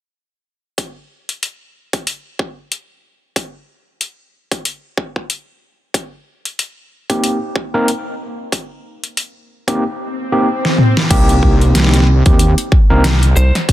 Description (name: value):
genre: glitch hop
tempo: 93 BPM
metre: 4/4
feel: swing 57% on 16ths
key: C minor pentatonic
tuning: A4 = 440 Hz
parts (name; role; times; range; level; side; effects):
- dubstep drum kit; drums; 0.8-13.7 s; crash cymbal, hi-hat, shaker, snare drum, toms; -17 LUFS; equal; overdrive
- electronic kick drum; drums; 0.8-13.7 s; none; -14 LUFS; equal; overdrive, high-pass filter on kick, high-pass filter on room
- overdriven tine electric piano; stabs; 7.1-13.1 s; Bb3 to Bb4; -18 LUFS; equal; medium tremolo, vintage 12-bit sampler grit, sidechain pumping, digital delay
- swell; sound effects; 10.1-11.1 s; none; -23 LUFS; left 2 dB; none
- wobble bass; bass; 11.1-13.3 s; C2 to Eb2; -12 LUFS; equal; chorus
- lightly driven lead guitar; melody; 13.4-13.5 s; C5; -20 LUFS; equal; digital delay
- rubbery square bass; bass; 13.4-13.5 s; C2; -11 LUFS; equal; tube saturation
room: light reverb, digital ambience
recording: dense, heavily limited modern master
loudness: -14 LUFS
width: side -14 dB against mid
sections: 0.8-11.1 A section; 11.1-13.7 B section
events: swell 10.1-11.1; drum fill 10.6-11.1; drop 11.1-13.7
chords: 0.8 Cm7